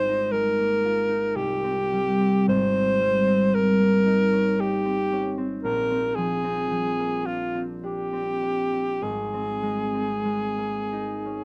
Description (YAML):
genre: classical, impressionist duo for alto saxophone and harp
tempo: 44-61 BPM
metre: 3/4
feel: rubato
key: Ab major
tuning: A4 = 440 Hz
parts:
  - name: bright alto saxophone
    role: melody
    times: 0.0-11.4 s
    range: F4 to C5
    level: -27 LUFS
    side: equal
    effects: none
  - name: concert harp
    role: accompaniment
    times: 0.0-11.4 s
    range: Ab1 to F4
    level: -28 LUFS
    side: equal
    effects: none
room: light reverb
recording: close, detailed microphones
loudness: -24 LUFS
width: mono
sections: 0.0-11.4 A section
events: none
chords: 0.0 Ab69; 1.4 Cm7; 2.5 Abmaj9; 5.6 Bb9; 9.0 Abadd9